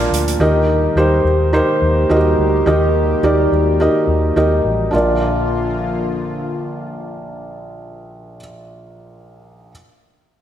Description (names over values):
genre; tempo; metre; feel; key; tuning
pop; 106 BPM; 4/4; straight; Bb major; A4 = 440 Hz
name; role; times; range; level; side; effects
felt-muted upright piano; accompaniment; 0.0-9.7 s; Bb1 to F5; -16 LUFS; right 1 dB; slapback echo
chorused pulse-width pad; sustained chords; 0.0-8.0 s; D3 to G4; -24 LUFS; left 2 dB; none
vintage muted fingered electric bass; bass; 0.0-8.4 s; A1 to Eb2; -19 LUFS; left 1 dB; none
room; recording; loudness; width
wet lush hall reverb, RT60 1.8 s, studio reverb; big arena sound; -13 LUFS; side -10 dB against mid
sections
0.0-4.9 A section; 4.9-7.2 B section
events
none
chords
0.4 Eb; 4.9 Bb